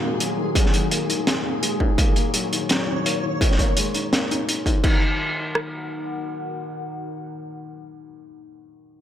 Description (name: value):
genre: half-time drum and bass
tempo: 168 BPM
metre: 4/4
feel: swing 55% on 16ths, half-time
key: unclear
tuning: A4 = 440 Hz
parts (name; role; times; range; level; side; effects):
- deep dark ambient pad; sustained chords; 0.0-8.5 s; Eb4 to Ab5; -34 LUFS; left 1 dB; chorus, built-in reverb, sidechain pumping
- felt-muted upright piano; arpeggios; 0.0-5.0 s; Bb2 to Eb4; -28 LUFS; left 3 dB; low-pass filter, digital delay
- flickering grainy texture; texture; 0.0-4.9 s; Ab3 to Db5; -30 LUFS; equal; built-in reverb
- crunchy breakbeat drum kit; drums; 0.2-4.9 s; crash cymbal, hi-hat, snare drum; -24 LUFS; equal; none
- industrial drum kit; drums; 0.6-5.6 s; kick drum, rim click; -20 LUFS; equal; distortion
room: light reverb, studio ambience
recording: none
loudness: -20 LUFS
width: side -10 dB against mid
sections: 0.0-4.8 A section; 4.8-7.7 B section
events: filter sweep on felt piano 0.0-4.8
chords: 0.0 Ebm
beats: 0.20 | 0.55 0.91 1.27 1.62 | 1.98 2.34 2.69 3.05 | 3.41 3.77 4.12 4.48 | 4.84 5.20 5.55 5.91 | 6.27 6.62 6.98 7.34